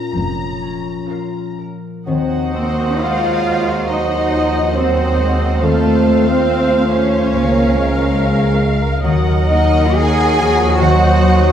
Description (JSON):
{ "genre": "classical", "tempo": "60-72 BPM", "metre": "4/4", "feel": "rubato", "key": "unclear", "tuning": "A4 = 439 Hz", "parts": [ { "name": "rich symphonic violin section", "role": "melody", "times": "0.0-11.5 s", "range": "F5 to Bb5", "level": "-27 LUFS", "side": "left 1 dB", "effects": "none" }, { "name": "mellow French horn section", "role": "sustained chords", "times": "0.0-11.5 s", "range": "Eb3 to F4", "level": "-20 LUFS", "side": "left 2 dB", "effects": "none" }, { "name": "concert harp", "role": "arpeggios", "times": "0.0-11.5 s", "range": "Bb2 to C6", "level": "-23 LUFS", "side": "left 3 dB", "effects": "none" }, { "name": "clear chamber double bass section", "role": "bass", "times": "0.1-11.5 s", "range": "F1 to Eb2", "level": "-18 LUFS", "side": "right 1 dB", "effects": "none" }, { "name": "rich symphonic cello section", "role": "bass", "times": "0.1-11.5 s", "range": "F2 to Ab4", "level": "-20 LUFS", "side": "right 1 dB", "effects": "none" }, { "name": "warm symphonic violin section", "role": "second line", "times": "1.1-11.5 s", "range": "A4 to Ab5", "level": "-25 LUFS", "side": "right 2 dB", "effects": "none" }, { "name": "rich symphonic viola section", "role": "accompaniment", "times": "1.1-11.5 s", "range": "Db4 to F5", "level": "-25 LUFS", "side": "equal", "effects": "none" }, { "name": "mellow clarinet", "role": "second line", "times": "2.1-11.5 s", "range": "Bb4 to C5", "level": "-25 LUFS", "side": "right 3 dB", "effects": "none" }, { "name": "mellow bassoon", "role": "accompaniment", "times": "2.1-11.5 s", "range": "F3 to Gb3", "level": "-23 LUFS", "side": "right 3 dB", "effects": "none" }, { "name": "mellow hollow flute section", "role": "second line", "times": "2.5-11.5 s", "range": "A4 to Ab5", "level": "-22 LUFS", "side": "equal", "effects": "none" } ], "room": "wet stone room reverb, RT60 1.1 s", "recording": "heard from further back in the room", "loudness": "-13 LUFS", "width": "side -9 dB against mid", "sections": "0.0-2.1 A section; 2.1-11.5 B section", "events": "none", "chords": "0.0 Bbm; 2.1 Cdim/Eb; 5.6 F7/Eb; 7.3 Bbm/Db; 9.0 Ebm; 10.8 Cdim/Eb" }